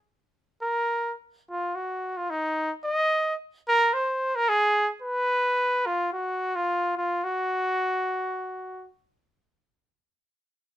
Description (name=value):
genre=mexican folk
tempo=free time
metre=none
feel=none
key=F# major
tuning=A4 = 441 Hz
part: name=clear trumpet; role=solo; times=0.6-8.9 s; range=D#4 to D#5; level=-24 LUFS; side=equal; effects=none
room=light reverb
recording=minimal, uncompressed stereo recording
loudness=-24 LUFS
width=side -13 dB against mid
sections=0.0-9.4 A section; 9.4-10.8 B section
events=none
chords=none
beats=free time